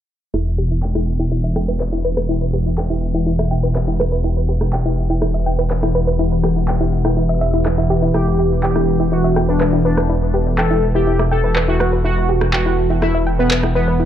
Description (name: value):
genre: melodic techno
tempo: 123 BPM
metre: 4/4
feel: straight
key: E minor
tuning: A4 = 440 Hz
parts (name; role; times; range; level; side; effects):
- evolving wavetable pad; sustained chords; 2.0-14.1 s; E3 to F#5; -23 LUFS; left 2 dB; chorus, built-in reverb
- soft round pluck; arpeggios; 0.3-14.1 s; E4 to G5; -22 LUFS; equal; chorus, dub echo
- swelling detuned saw bass; bass; 0.3-14.1 s; E1; -18 LUFS; equal; none
- electronic rim click and handclaps; drums; 0.3-13.7 s; none; -25 LUFS; equal; none
- resonant sweep polysynth; melody; 8.1-14.0 s; B3 to A4; -20 LUFS; equal; chorus, dub echo
room: light reverb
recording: echo-heavy mix, low-pass filter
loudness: -15 LUFS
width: side -10 dB against mid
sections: 0.3-14.1 A section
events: filter sweep on synth arpeggio sound 0.3-14.1; filter sweep on ambient pad 0.3-14.1; filter sweep 0.3-14.1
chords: 0.3 Emadd9; 8.1 Gmaj7/E